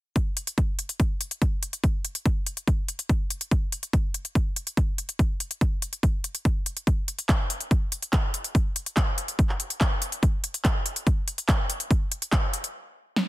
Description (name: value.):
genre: psychedelic trance.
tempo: 143 BPM.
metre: 4/4.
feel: straight.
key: none.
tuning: none.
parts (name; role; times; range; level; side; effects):
big-room dance drum kit; drums; 0.2-13.2 s; handclaps, hi-hat, snare drum; -28 LUFS; equal; overdrive.
electronic kick drum; drums; 0.2-12.4 s; none; -23 LUFS; equal; overdrive.
room: digital ambience.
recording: dense, heavily limited modern master.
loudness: -24 LUFS.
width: side -16 dB against mid.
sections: 0.2-13.3 A section.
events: stop 12.7-13.3.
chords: none.